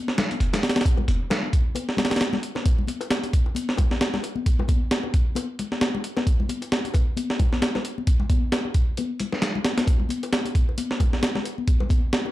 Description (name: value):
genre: breakbeat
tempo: 133 BPM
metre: 4/4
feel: swing 57% on 16ths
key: none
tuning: none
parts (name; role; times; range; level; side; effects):
- breakbeat sampler-style drum kit; drums; 0.1-12.3 s; hi-hat, kick drum, snare drum; -21 LUFS; equal; none
- bongos and congas; percussion; 0.2-12.3 s; none; -30 LUFS; left 5 dB; none
room: light reverb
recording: dark, warm production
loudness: -21 LUFS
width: side -16 dB against mid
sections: 0.0-12.3 A section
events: none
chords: none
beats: 0.40 | 0.85 1.30 1.75 2.21 | 2.66 3.11 3.56 4.01 | 4.46 4.91 5.36 5.81 | 6.26 6.72 7.17 7.62 | 8.07 8.52 8.97 9.42 | 9.87 10.32 10.78 11.23 | 11.68 12.13